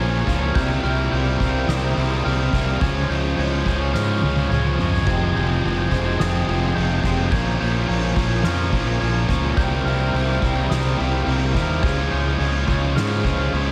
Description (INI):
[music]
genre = post-rock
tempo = 106 BPM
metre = 4/4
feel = straight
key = unclear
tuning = A4 = 438 Hz
[part]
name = pedal harmonium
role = sustained chords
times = 0.0-13.7 s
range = F3 to Ab5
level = -34 LUFS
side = equal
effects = none
[part]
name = glockenspiel with rubber mallets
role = arpeggios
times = 0.0-13.7 s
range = Eb6 to Ab6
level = -32 LUFS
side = equal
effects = delay
[part]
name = cranked stack guitar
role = riff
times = 0.0-13.7 s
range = F2 to E4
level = -29 LUFS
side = equal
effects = overdrive, subtle chorus
[part]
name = sludgy distorted guitar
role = riff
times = 0.0-13.7 s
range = F2 to F4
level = -28 LUFS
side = equal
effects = overdrive
[part]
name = fuzz fingered electric bass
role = bass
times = 0.0-13.7 s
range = F1 to Ab2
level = -25 LUFS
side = equal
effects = overdrive
[part]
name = soft-mallet drum kit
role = drums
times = 0.3-13.7 s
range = crash cymbal, kick drum, ride cymbal, snare drum, toms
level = -28 LUFS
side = equal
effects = none
[sound]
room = moderate lush hall reverb, RT60 2.7 s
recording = dreamy mix soaked in reverb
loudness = -20 LUFS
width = mono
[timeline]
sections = 0.0-13.7 A section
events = drum fill 3.9-5.1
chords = 0.0 Bbm7; 0.6 C7sus4; 2.8 Dbmaj7; 5.1 Fm9; 7.3 Bbm7; 9.6 C7sus4; 11.8 Dbmaj7